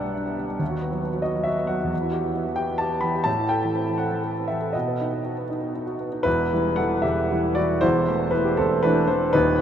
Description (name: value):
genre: classical, romantic character piece for solo piano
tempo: 75-94 BPM (dotted quarters)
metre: 6/8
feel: rubato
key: E minor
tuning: A4 = 440 Hz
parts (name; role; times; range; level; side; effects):
- warm grand piano; solo; 0.0-9.6 s; D#1 to B5; -21 LUFS; equal; none
room: wet huge ambient reverb, RT60 8.5 s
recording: in a vast, echoing space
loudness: -21 LUFS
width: side -9 dB against mid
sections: 0.0-6.3 A section; 6.3-9.6 B section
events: none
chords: 0.0 G/B; 0.6 B/D#; 1.9 Em; 3.3 Am7; 4.7 B; 6.3 Em; 7.8 Am/E